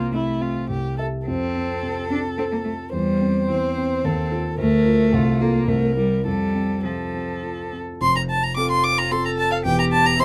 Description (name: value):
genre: quick classical-period movement for piano trio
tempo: 101-113 BPM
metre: 3/4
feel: rubato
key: F major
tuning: A4 = 440 Hz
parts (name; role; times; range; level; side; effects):
- rich violin; melody; 0.0-10.2 s; E4 to D6; -26 LUFS; equal; none
- clear cello; second line; 0.0-10.2 s; F3 to A4; -26 LUFS; equal; none
- dark concert grand piano; accompaniment; 0.0-10.2 s; E1 to E5; -26 LUFS; equal; none
room: light reverb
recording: close, detailed microphones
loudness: -22 LUFS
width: mono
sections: 0.0-8.0 A section; 8.0-10.2 B section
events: none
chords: 0.0 F/C; 0.7 C; 1.3 F; 2.9 C/E; 4.1 F7/Eb; 4.6 Bb/D; 5.1 F/C; 5.7 C7; 6.3 F; 9.7 C/E (rootless)